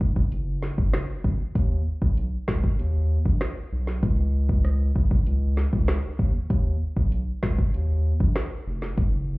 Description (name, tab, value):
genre	dancehall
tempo	97 BPM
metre	4/4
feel	straight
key	Eb minor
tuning	A4 = 440 Hz
part	saturated sub bass	bass	0.0-9.4 s	F1 to Eb2	-24 LUFS	equal	none
part	afro-pop drum kit	drums	0.0-9.1 s	finger snaps, hi-hat, kick drum, rim click, snare drum	-24 LUFS	equal	overdrive
room	little or no reverb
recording	heard muffled through a wall, club reverb, EQ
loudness	-22 LUFS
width	side -23 dB against mid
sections	0.0-9.4 A section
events	none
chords	none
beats	0.32 0.94 | 1.55 2.17 2.79 3.41 | 4.03 4.65 5.26 5.88 | 6.50 7.12 7.74 8.36 | 8.98